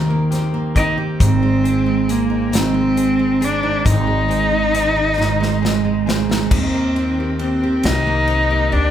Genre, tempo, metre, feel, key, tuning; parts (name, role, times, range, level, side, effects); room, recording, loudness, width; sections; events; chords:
six-eight pop ballad; 45 BPM (dotted quarters); 6/8; straight; Eb major; A4 = 440 Hz
picked steel-string acoustic guitar; accompaniment; 0.0-8.9 s; Ab2 to G4; -21 LUFS; right 5 dB
direct-recorded clean electric guitar; arpeggios; 0.0-8.9 s; Eb3 to Ab4; -28 LUFS; left 2 dB
upright bass; bass; 0.0-8.9 s; Ab1 to Eb2; -23 LUFS; left 1 dB
modern studio drum kit; drums; 0.3-8.9 s; crash cymbal, hi-hat, kick drum, ride cymbal, snare drum; -22 LUFS; equal
warm cello; melody; 0.8-8.9 s; Bb3 to Eb4; -18 LUFS; left 1 dB
wet large studio reverb, RT60 0.9 s; band playing live in one room; -15 LUFS; side -10 dB against mid
0.0-6.5 A section; 6.5-8.9 B section
drum fill 5.2-6.5
0.0 Eb6; 1.2 Ab; 6.5 Eb6